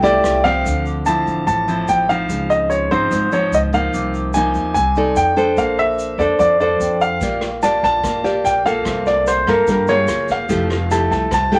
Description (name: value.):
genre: bossa nova.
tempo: 146 BPM.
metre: 4/4.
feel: straight.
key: F major.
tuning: A4 = 440 Hz.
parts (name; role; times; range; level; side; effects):
clear grand piano; melody; 0.0-11.6 s; Bb4 to A5; -19 LUFS; equal; none.
nylon-string guitar; accompaniment; 0.0-11.6 s; Ab2 to D5; -22 LUFS; equal; none.
vibraphone with medium hard mallets; accompaniment; 0.0-10.5 s; Db5 to Eb6; -31 LUFS; equal; none.
upright bass; bass; 0.0-11.6 s; F1 to G2; -28 LUFS; equal; none.
swinging big-band drum kit; drums; 0.0-0.5, 7.2-11.6 s; kick drum, rim click, snare drum; -31 LUFS; equal; none.
egg shaker; percussion; 0.0-11.6 s; none; -40 LUFS; equal; none.
room: moderate club reverb, RT60 0.5 s.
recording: none.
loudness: -17 LUFS.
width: mono.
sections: 0.7-11.6 A section.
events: none.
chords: 0.0 Fmaj9; 0.7 Dm9; 2.3 Dbmaj9; 3.9 Ab69/C; 5.2 F13; 5.6 Bbmaj9; 7.2 Gm9/Bb; 8.9 C7sus4; 10.1 Gbmaj9; 10.5 Fmaj9.